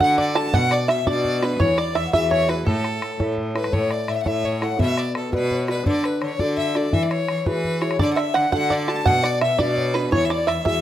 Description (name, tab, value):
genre	celtic folk, Celtic jig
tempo	113 BPM (dotted quarters)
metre	6/8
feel	straight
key	A major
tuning	A4 = 441 Hz
part	bright fiddle	melody	0.0-10.8 s	A4 to A5	-26 LUFS	equal	none
part	bluegrass banjo	second line	0.0-3.3, 8.0-10.8 s	A4 to A5	-23 LUFS	right 5 dB	none
part	hollow baroque flute	second line	0.0-10.8 s	A4 to A5	-26 LUFS	left 6 dB	slapback echo
part	dark upright piano	accompaniment	0.0-10.8 s	B2 to D5	-26 LUFS	right 1 dB	none
part	rich cello	bass	0.0-10.8 s	E2 to E3	-26 LUFS	equal	none
part	bodhran	percussion	0.0-10.7 s	none	-25 LUFS	left 1 dB	none
room	light reverb, studio reverb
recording	rough home demo mix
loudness	-19 LUFS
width	side -11 dB against mid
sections	0.0-3.7 A section; 3.7-10.8 A section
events	none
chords	0.0 D; 0.5 Bm; 1.6 Eadd9; 2.7 A; 4.8 Bm; 5.9 D; 6.9 Eadd9; 8.0 D; 9.1 Bm; 10.1 Eadd9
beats	0.00 | 0.54 1.07 | 1.60 2.13 | 2.67 3.20 | 3.73 4.26 | 4.79 5.33 | 5.86 6.39 | 6.93 7.46 | 7.99 8.52 | 9.06 9.59 | 10.12 10.65